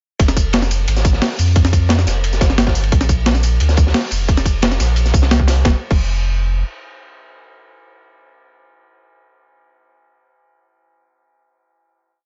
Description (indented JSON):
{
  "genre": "liquid drum and bass",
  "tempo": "176 BPM",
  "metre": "4/4",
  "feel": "straight",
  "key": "F dorian",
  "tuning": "A4 = 443 Hz",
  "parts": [
    { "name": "warm sub bass", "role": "bass", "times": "0.2-6.6 s", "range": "F1 to F2", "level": "-18 LUFS", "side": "equal", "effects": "tube saturation" },
    { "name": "breakbeat sampler-style drum kit", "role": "drums", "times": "0.2-6.0 s", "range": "crash cymbal, hi-hat, snare drum, tambourine", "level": "-22 LUFS", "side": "equal", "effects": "small room ambience" },
    { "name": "crunchy breakbeat drum kit", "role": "drums", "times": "0.2-5.6 s", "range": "hi-hat, ride cymbal, snare drum", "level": "-28 LUFS", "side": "equal", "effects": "high-pass filter on cymbals, small room ambience, high-pass filter on hats, high-pass filter on snare, high-pass filter on room" },
    { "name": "electronic kick drum", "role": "drums", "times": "0.2-6.0 s", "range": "none", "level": "-17 LUFS", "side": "equal", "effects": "overdrive, small room ambience" }
  ],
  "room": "little or no reverb",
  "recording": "nothing above 7.6 kHz",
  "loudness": "-16 LUFS",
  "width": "mono",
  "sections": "0.2-5.6 drop; 5.6-8.4 final note",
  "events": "drop 0.2-5.6",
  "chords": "none"
}